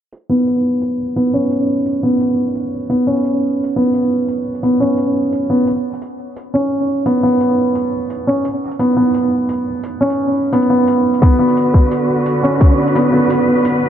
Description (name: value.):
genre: half-time drum and bass.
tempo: 173 BPM.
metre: 4/4.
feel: half-time.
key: B minor.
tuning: A4 = 440 Hz.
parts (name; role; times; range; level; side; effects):
electronic hi-hat; drums; 0.1-13.7 s; none; -40 LUFS; right 2 dB; overdrive, low-pass filter on hats.
felt-muted upright piano; arpeggios; 0.3-13.9 s; B3 to C#4; -14 LUFS; equal; low-pass filter, digital delay.
clear studio cello section; sustained chords; 11.2-13.9 s; D3 to B4; -16 LUFS; equal; vintage 12-bit sampler grit, sidechain pumping.
electronic kick drum; drums; 11.2-12.7 s; none; -10 LUFS; equal; overdrive.
room: moderate huge ambient reverb, RT60 4.8 s.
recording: low-pass filter.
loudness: -13 LUFS.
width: side -9 dB against mid.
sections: 0.1-13.9 A section.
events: filter sweep on drum 0.1-13.9; filter sweep on felt piano 0.1-13.9; filter sweep 0.1-13.9.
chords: 0.1 Bsus2; 11.2 Bm.